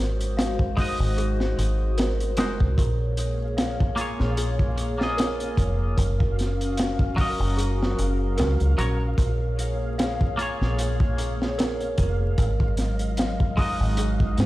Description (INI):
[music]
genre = trip hop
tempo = 75 BPM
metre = 4/4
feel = swing 55% on 16ths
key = Bb minor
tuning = A4 = 441 Hz
[part]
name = dark analog pad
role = sustained chords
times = 0.0-14.5 s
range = Gb3 to Eb5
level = -32 LUFS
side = equal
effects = chorus
[part]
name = celesta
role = arpeggios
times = 0.0-14.5 s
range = Ab4 to F5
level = -33 LUFS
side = right 2 dB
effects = digital delay
[part]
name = deep dub fingered electric bass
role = bass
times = 0.0-14.5 s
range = F1 to Ab2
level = -25 LUFS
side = equal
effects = tube saturation
[part]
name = crunchy breakbeat drum kit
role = drums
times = 0.2-14.5 s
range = hi-hat, kick drum, snare drum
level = -25 LUFS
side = equal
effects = none
[part]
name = clean electric guitar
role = accompaniment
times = 0.8-14.5 s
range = Gb3 to Eb5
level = -31 LUFS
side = equal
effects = tremolo, tape echo
[part]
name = flickering grainy texture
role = texture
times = 3.1-14.5 s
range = F5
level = -41 LUFS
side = right 1 dB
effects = built-in reverb
[sound]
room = small room ambience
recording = played on a big sound system in a bare room, stone room reverb, vinyl crackle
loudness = -22 LUFS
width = side -17 dB against mid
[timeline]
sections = 0.0-14.5 A section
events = none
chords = 0.0 Ab7; 2.8 Bbm7; 6.0 Gb; 9.2 Bbm7; 12.4 Ab5